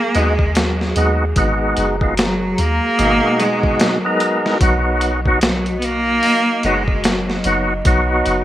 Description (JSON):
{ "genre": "trip hop", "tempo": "74 BPM", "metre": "4/4", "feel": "swing 60% on 16ths", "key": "G# minor", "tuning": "A4 = 440 Hz", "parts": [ { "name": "rich cello", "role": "melody", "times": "0.0-7.7 s", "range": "F#3 to B3", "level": "-19 LUFS", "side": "equal", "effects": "tape echo" }, { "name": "dark analog pad", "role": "sustained chords", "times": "0.0-8.4 s", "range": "F#4 to A#5", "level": "-27 LUFS", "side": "right 1 dB", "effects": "chorus" }, { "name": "boom bap sampler-style drum kit", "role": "drums", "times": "0.1-8.4 s", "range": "hi-hat, kick drum, snare drum", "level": "-19 LUFS", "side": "equal", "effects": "none" }, { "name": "percussive tonewheel organ", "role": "accompaniment", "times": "0.2-8.4 s", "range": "B2 to A#4", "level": "-18 LUFS", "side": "equal", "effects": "overdrive, fast rotary speaker, tremolo, low-pass filter, tape echo" }, { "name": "soft 808-style bass", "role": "bass", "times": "0.2-8.4 s", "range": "F#1 to D#2", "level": "-21 LUFS", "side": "equal", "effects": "tube saturation" } ], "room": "digital ambience", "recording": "rough home demo mix, vinyl crackle", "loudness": "-14 LUFS", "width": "side -13 dB against mid", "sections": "0.0-8.4 A section", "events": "filter sweep on tonewheel organ 0.0-8.4", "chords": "0.0 G#m7; 4.6 B" }